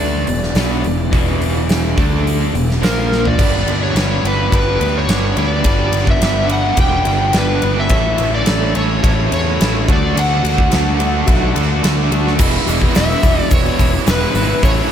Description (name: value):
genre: classic rock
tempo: 106 BPM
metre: 4/4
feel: straight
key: unclear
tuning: A4 = 438 Hz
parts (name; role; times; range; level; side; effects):
- overdriven slide guitar; melody; 0.0-14.9 s; A#4 to G5; -21 LUFS; equal; slapback echo, analog delay
- picked acoustic archtop guitar; accompaniment; 0.0-14.9 s; E2 to A4; -29 LUFS; right 7 dB; none
- biting overdriven guitar; riff; 0.0-14.9 s; E2 to B4; -23 LUFS; left 10 dB; slapback echo
- cranked stack guitar; riff; 0.0-14.9 s; E2 to G4; -23 LUFS; right 11 dB; overdrive, tremolo, slapback echo
- fuzz picked electric bass; bass; 0.0-14.8 s; E1 to E2; -18 LUFS; equal; overdrive
- huge arena drum kit; drums; 0.3-14.8 s; crash cymbal, hi-hat, kick drum, ride cymbal, snare drum, toms; -17 LUFS; equal; none
- clear upright piano; accompaniment; 7.9-14.9 s; E4 to E5; -29 LUFS; left 4 dB; none
- tube shaker; percussion; 12.4-14.8 s; none; -34 LUFS; left 12 dB; none
room: light reverb, small room reverb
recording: none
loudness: -13 LUFS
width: side -9 dB against mid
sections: 0.0-3.4 A section; 3.4-12.4 B section; 12.4-14.9 C section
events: drum fill 3.1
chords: 0.3 E; 2.0 D5; 2.5 E; 2.8 A#5; 3.4 G; 7.9 A; 9.9 D; 12.4 E